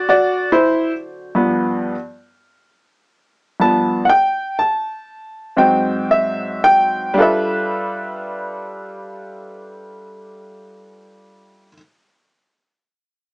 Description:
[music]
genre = blues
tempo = 36-47 BPM (dotted quarters)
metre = 12/8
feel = straight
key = G mixolydian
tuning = A4 = 436 Hz
[part]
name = clear upright piano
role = accompaniment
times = 0.0-11.8 s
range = G2 to A5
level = -15 LUFS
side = equal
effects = none
[sound]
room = light reverb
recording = home recording on cassette, small speaker sound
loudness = -15 LUFS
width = side -31 dB against mid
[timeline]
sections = 0.0-7.2 A section; 7.2-13.3 B section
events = slowing down 0.0-7.2; upright piano solo 0.0-7.2; stop 1.4-5.6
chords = 0.0 D9; 1.4 G9; 5.6 Ab7; 7.2 G13

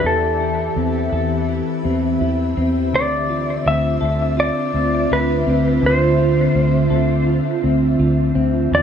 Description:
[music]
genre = dream pop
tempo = 83 BPM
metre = 4/4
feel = straight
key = D dorian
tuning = A4 = 438 Hz
[part]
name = clean lap steel guitar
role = melody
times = 0.0-8.8 s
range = A4 to E5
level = -21 LUFS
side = left 1 dB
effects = shimmer reverb, ping-pong delay
[part]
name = ethereal airy pad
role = sustained chords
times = 0.0-8.8 s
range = D3 to E5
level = -20 LUFS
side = right 1 dB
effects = ensemble chorus, built-in reverb, shimmer reverb
[part]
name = semi-hollow electric guitar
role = arpeggios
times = 0.0-8.8 s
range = D3 to A4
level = -21 LUFS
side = left 2 dB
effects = analog chorus, shimmer reverb, ping-pong delay
[part]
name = vintage muted fingered electric bass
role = bass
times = 0.0-8.8 s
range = D2 to E2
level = -22 LUFS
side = right 1 dB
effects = none
[sound]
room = wet studio ambience, RT60 0.5 s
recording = none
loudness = -15 LUFS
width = side -8 dB against mid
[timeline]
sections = 0.0-8.8 A section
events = none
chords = 0.0 Am7/E; 2.9 Dm7

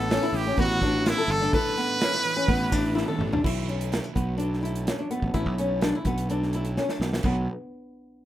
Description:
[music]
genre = math rock and midwest emo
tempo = 126 BPM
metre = 4/4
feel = straight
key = B minor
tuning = A4 = 440 Hz
[part]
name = brilliant trumpet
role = melody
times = 0.0-2.9 s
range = E4 to B4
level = -26 LUFS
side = right 2 dB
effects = none
[part]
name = twelve-string electric guitar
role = accompaniment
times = 0.0-7.5 s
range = F#2 to B4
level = -38 LUFS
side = right 8 dB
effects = none
[part]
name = flamenco guitar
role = arpeggios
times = 0.0-7.5 s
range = B3 to A4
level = -28 LUFS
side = left 2 dB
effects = none
[part]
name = overdriven semi-hollow guitar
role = riff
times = 0.0-3.4 s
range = A2 to E4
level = -37 LUFS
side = right 2 dB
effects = none
[part]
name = fuzz fingered electric bass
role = bass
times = 0.0-7.5 s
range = G1 to B1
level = -28 LUFS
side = right 1 dB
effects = overdrive
[part]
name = modern studio drum kit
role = drums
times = 0.0-7.4 s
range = crash cymbal, hi-hat, kick drum, snare drum, toms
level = -30 LUFS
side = right 1 dB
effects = none
[sound]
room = light reverb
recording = rough home demo mix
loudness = -23 LUFS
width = side -13 dB against mid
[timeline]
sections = 0.0-3.4 A section; 3.4-7.3 B section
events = drum fill 3.0-3.4, 6.8-7.3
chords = 0.0 A9sus4; 3.4 Bm11; 7.3 Bsus2

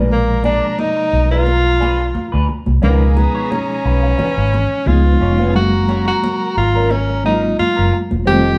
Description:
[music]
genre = lush 1970s-style soul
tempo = 88 BPM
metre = 4/4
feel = swing 54% on 16ths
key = F# major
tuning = A4 = 441 Hz
[part]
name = muted studio string section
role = second line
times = 0.0-8.6 s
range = B3 to C6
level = -29 LUFS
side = equal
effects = none
[part]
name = reed electric piano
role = accompaniment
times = 0.0-8.6 s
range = B2 to E#5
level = -23 LUFS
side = equal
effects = fast tremolo
[part]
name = electric guitar through a small old amp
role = riff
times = 0.0-8.5 s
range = C4 to D5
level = -27 LUFS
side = equal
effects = wah
[part]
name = vintage muted fingered electric bass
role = bass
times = 0.0-8.6 s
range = E1 to D2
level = -18 LUFS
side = equal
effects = none
[part]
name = breathy tenor saxophone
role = melody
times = 0.1-8.6 s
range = A#3 to G4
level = -20 LUFS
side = equal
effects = none
[part]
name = congas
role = percussion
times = 0.4-8.3 s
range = none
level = -29 LUFS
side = equal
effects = none
[sound]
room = moderate large studio reverb, RT60 1.0 s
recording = band playing live in one room, nothing above 10.3 kHz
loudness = -16 LUFS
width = mono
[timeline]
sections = 0.0-8.6 A section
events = none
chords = 0.0 A#7b9; 2.8 C#7; 5.5 F#maj7

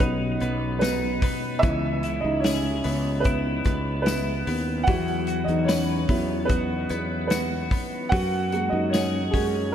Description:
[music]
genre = pop ballad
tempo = 74 BPM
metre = 4/4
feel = straight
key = unclear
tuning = A4 = 442 Hz
[part]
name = dark upright piano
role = accompaniment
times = 0.0-9.7 s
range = E3 to F#5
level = -26 LUFS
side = right 2 dB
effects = none
[part]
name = twelve-string electric guitar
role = arpeggios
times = 0.0-9.7 s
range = B2 to B4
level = -29 LUFS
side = left 4 dB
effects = ping-pong delay
[part]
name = sustaining fretless electric bass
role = bass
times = 0.0-9.7 s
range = B1 to F#2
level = -29 LUFS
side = equal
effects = none
[part]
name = modern studio drum kit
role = drums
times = 0.0-9.5 s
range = hi-hat, kick drum, snare drum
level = -27 LUFS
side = equal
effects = none
[part]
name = tambourine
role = percussion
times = 0.8-9.1 s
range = none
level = -40 LUFS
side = left 8 dB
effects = none
[sound]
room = moderate lush hall reverb, RT60 2.9 s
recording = dreamy mix soaked in reverb, lossy compression artefacts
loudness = -22 LUFS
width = side -9 dB against mid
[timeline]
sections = 0.0-9.7 A section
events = upright piano solo 0.0-9.7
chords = 0.0 B; 1.6 C#m7; 4.9 Esus2; 8.1 F#add9

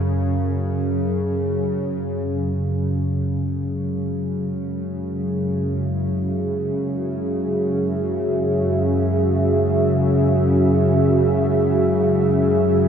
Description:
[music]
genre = dark ambient drone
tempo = free time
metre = none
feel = none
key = unclear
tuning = A4 = 440 Hz
[part]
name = bowed-like drone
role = drone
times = 0.0-12.9 s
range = F#2 to C#3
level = -20 LUFS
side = equal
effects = built-in reverb
[part]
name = dark analog pad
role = sustained chords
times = 4.6-12.9 s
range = F#4 to E5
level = -22 LUFS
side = right 2 dB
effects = chorus
[sound]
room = wet cathedral reverb, RT60 6.9 s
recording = cassette tape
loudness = -18 LUFS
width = side -8 dB against mid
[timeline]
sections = 0.0-2.3 A section; 2.3-12.9 B section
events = filter sweep on synth drone 2.3-12.9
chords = 0.0 F#5; 2.3 F#sus2

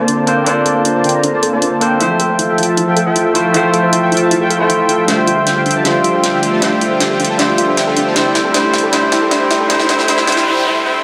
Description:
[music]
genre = future bass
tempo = 156 BPM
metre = 4/4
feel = half-time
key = F major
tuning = A4 = 439 Hz
[part]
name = barky tine electric piano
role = accompaniment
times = 0.0-11.0 s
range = G3 to E5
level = -18 LUFS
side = equal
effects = overdrive, dub echo
[part]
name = airy breathy pad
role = sustained chords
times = 0.0-10.4 s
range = D3 to E5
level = -26 LUFS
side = equal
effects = none
[part]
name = soft round pluck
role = arpeggios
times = 0.0-10.4 s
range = D4 to F5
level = -24 LUFS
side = equal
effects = chorus, dub echo
[part]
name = soft supersaw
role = riff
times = 0.0-11.0 s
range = D3 to Bb5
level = -18 LUFS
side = equal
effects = low-pass filter, dub echo
[part]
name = big-room dance drum kit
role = drums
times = 0.1-10.4 s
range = hi-hat, snare drum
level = -21 LUFS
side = equal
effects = high-pass filter on hats, high-pass filter on snare
[part]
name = riser and noise sweep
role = sound effects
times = 7.8-11.0 s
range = none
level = -27 LUFS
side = equal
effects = none
[sound]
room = wet lush hall reverb, RT60 1.7 s, digital ambience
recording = high-pass filter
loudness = -14 LUFS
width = mono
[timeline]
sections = 0.0-11.0 A section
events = build-up 0.0-11.0; filter sweep on supersaw synth 0.0-11.0; filter sweep on synth arpeggio sound 0.0-11.0; filter sweep 0.0-11.0; drum fill 5.1-10.5; noise sweep 9.7-11.0; break 10.5-11.0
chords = 0.0 Bbmaj9; 2.0 Fmaj7; 5.1 Dm11; 8.2 Am7

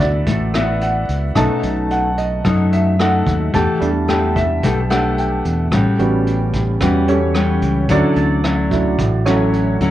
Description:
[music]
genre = bossa nova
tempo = 110 BPM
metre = 4/4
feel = straight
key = D major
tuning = A4 = 440 Hz
[part]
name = nylon-string guitar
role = accompaniment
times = 0.0-9.9 s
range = A2 to G4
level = -18 LUFS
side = left 2 dB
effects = none
[part]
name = warm concert grand piano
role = accompaniment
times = 0.0-9.9 s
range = F#3 to A5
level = -20 LUFS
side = right 2 dB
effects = none
[part]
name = fingered electric bass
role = bass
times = 0.0-9.9 s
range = A1 to F#2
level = -20 LUFS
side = equal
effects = none
[part]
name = vintage brush drum kit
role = drums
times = 0.0-9.9 s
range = hi-hat, kick drum, rim click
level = -25 LUFS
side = equal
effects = none
[sound]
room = light reverb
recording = worn, warbling old tape, cassette tape, warbly pitch drift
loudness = -14 LUFS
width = side -13 dB against mid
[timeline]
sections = 0.0-9.9 A section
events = grand piano solo 0.0-9.9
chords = 0.0 D69; 1.4 B7; 3.5 Em7; 5.7 A13; 7.9 Dmaj9

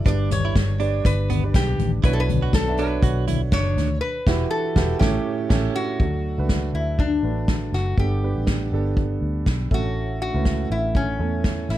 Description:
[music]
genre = piano-driven pop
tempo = 121 BPM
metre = 4/4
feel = swing 56% on 16ths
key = D major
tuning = A4 = 443 Hz
[part]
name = metal-body resonator slide guitar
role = melody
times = 0.0-11.8 s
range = C#4 to D5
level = -28 LUFS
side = left 3 dB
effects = none
[part]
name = dark concert grand piano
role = accompaniment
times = 0.0-11.8 s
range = G2 to E5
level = -27 LUFS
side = right 6 dB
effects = none
[part]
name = vintage muted fingered electric bass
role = bass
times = 0.0-11.8 s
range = E1 to E2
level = -24 LUFS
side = equal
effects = none
[part]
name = direct-recorded clean electric guitar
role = riff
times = 0.1-3.9 s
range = B3 to F#4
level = -30 LUFS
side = right 9 dB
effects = wide subtle chorus
[part]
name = unplugged drum kit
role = drums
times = 0.1-11.8 s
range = crash cymbal, hi-hat, kick drum, snare drum, toms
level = -22 LUFS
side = equal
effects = none
[sound]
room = little or no reverb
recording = none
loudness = -19 LUFS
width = side -13 dB against mid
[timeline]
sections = 0.0-6.0 A section; 6.0-11.8 B section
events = band accent 4.0-6.0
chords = 0.1 G; 2.0 Bmadd9; 4.0 Emadd9; 5.0 A7; 6.0 D; 8.0 Gadd9; 9.7 A

